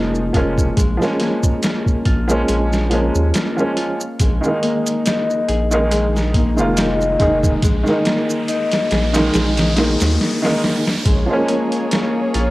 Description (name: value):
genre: trip hop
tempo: 70 BPM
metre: 4/4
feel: swing 55% on 16ths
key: Bb minor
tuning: A4 = 440 Hz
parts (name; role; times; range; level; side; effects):
- warm upright piano; accompaniment; 0.0-12.5 s; Eb3 to F4; -20 LUFS; right 1 dB; harmonic tremolo, cassette tape, tape echo
- Celtic harp; arpeggios; 0.0-12.5 s; Ab3 to Ab4; -22 LUFS; left 2 dB; cassette tape, tape echo
- round analog bass; bass; 0.0-12.5 s; F1 to Eb2; -20 LUFS; equal; tube saturation
- maracas; percussion; 0.1-10.2 s; none; -30 LUFS; right 2 dB; none
- boom bap sampler-style drum kit; drums; 0.3-12.5 s; hi-hat, kick drum, snare drum; -20 LUFS; equal; cassette tape
- riser; sound effects; 6.6-11.1 s; none; -29 LUFS; right 1 dB; none
- muted studio violin section; sustained chords; 11.1-12.5 s; Bb3 to Db5; -24 LUFS; equal; cassette tape
room: little or no reverb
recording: home recording on cassette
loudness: -15 LUFS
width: side -18 dB against mid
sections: 0.0-11.1 A section; 11.1-12.5 B section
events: riser 6.6-11.1; break 10.2-11.1; drum fill 10.2-11.1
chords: 0.0 Bbm7